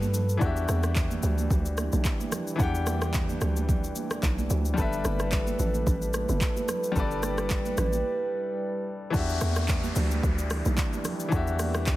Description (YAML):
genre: amapiano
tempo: 110 BPM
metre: 4/4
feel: swing 55% on 16ths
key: unclear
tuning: A4 = 440 Hz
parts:
  - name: bright grand piano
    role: accompaniment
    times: 0.0-12.0 s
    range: E3 to G5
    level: -33 LUFS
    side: left 4 dB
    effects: none
  - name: mellow French horn section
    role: sustained chords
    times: 0.0-12.0 s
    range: E3 to B4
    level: -33 LUFS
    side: right 1 dB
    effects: sidechain pumping
  - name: afro-pop drum kit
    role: drums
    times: 0.0-12.0 s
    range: handclaps, hi-hat, kick drum, rim click, shaker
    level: -29 LUFS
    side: equal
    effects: none
  - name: congas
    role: percussion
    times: 0.0-11.7 s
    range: none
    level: -36 LUFS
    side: right 6 dB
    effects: none
  - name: hollow log drum bass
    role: bass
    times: 0.4-12.0 s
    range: G1 to E2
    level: -28 LUFS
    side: equal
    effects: none
  - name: downlifter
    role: sound effects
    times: 9.1-12.0 s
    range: none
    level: -38 LUFS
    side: equal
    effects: none
room: little or no reverb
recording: heavily compressed radio sound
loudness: -25 LUFS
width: side -16 dB against mid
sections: 0.0-9.1 A section; 9.1-12.0 B section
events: break 8.1-9.1; drop 9.1-12.0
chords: 0.4 Em7; 4.8 G69; 9.1 Em7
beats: | 0.41 0.96 1.50 2.05 | 2.60 3.14 3.69 4.23 | 4.78 5.32 5.87 6.41 | 6.96 7.50 8.05 8.60 | 9.14 9.69 10.23 10.78 | 11.32 11.87